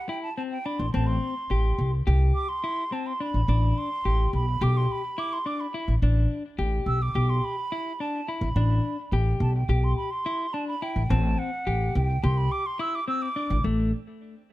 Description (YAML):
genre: progressive instrumental, band music in an uneven meter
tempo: 212 BPM (eighths)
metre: 9/8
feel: straight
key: A dorian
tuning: A4 = 440 Hz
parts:
  - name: hollow concert flute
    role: melody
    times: 0.0-13.6 s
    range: F#5 to E6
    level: -31 LUFS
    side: right 2 dB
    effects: plate reverb
  - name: clean electric guitar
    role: arpeggios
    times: 0.1-13.9 s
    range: A3 to G4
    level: -31 LUFS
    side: left 4 dB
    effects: warbly pitch drift, ping-pong delay
  - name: upright bass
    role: bass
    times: 0.8-13.9 s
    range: A1 to C2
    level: -23 LUFS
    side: equal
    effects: none
room: light reverb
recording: none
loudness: -23 LUFS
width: side -16 dB against mid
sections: 0.0-13.6 A section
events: flute solo 0.0-13.6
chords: 0.0 Am7; 3.5 G/A; 11.1 Am7; 13.6 N.C.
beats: 0.09 0.37 0.65 | 0.94 1.22 1.50 1.79 2.07 2.35 2.63 2.92 3.20 | 3.48 3.77 4.05 4.33 4.61 4.89 5.18 5.46 5.74 | 6.02 6.31 6.59 6.87 7.15 7.44 7.72 8.00 8.28 | 8.56 8.85 9.13 9.41 9.69 9.98 10.26 10.54 10.82 | 11.11 11.39 11.67 11.95 12.23 12.52 12.80 13.08 13.36 | 13.65